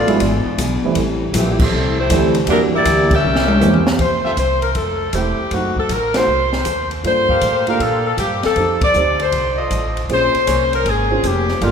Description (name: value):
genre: jazz, big band swing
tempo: 158 BPM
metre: 4/4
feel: swing 66% on 8ths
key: F major from 4.0 s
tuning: A4 = 440 Hz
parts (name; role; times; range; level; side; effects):
- warm saxophone section; melody; 0.0-11.7 s; E3 to E5; -18 LUFS; left 2 dB; none
- picked steel-string acoustic guitar; accompaniment; 0.0-3.9, 10.1-11.7 s; A2 to C5; -22 LUFS; left 2 dB; none
- upright bass; bass; 0.0-11.7 s; E1 to Bb2; -22 LUFS; equal; none
- warm grand piano; accompaniment; 0.1-11.7 s; E3 to C5; -22 LUFS; right 5 dB; none
- open jazz drum kit; drums; 0.1-11.7 s; crash cymbal, hi-hat, kick drum, ride cymbal, snare drum, toms; -22 LUFS; equal; none
- clear trumpet section; stabs; 4.2-4.3, 7.3-11.7 s; F4 to F5; -26 LUFS; right 4 dB; none
room: wet church reverb, RT60 3.2 s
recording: recorded in a church or concert hall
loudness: -14 LUFS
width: side -7 dB against mid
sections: 0.0-4.0 A section; 4.0-11.7 B section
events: band accent 1.5, 6.1, 8.8; drum fill 3.2-4.0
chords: 0.2 E7; 1.0 Am7; 2.5 Em7b5; 3.2 C7b9; 4.0 Fmaj9; 5.5 F#dim7; 7.0 Gm9; 8.6 F7; 10.1 Bbm9